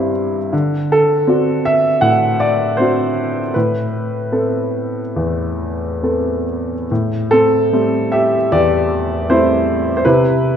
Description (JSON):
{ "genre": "classical, lyrical solo piano", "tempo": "66-82 BPM", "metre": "4/4", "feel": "rubato", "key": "A dorian", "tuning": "A4 = 441 Hz", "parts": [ { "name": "warm upright piano", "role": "solo", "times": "0.0-10.6 s", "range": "E2 to F#5", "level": "-14 LUFS", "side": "equal", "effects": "none" } ], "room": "moderate concert hall reverb, RT60 2.0 s", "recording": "recorded in a church or concert hall, nothing above 10.8 kHz", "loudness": "-14 LUFS", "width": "side -8 dB against mid", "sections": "0.0-6.9 A section; 6.9-10.6 A section", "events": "none", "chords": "0.0 Cmaj7; 0.5 D7; 3.5 Amadd9; 6.9 Am7; 10.0 Cmaj7", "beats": "| 0.53 1.27 2.02 2.79 | 3.55 4.32 5.16 6.04 | 6.90 7.72 8.51 9.28 | 10.04" }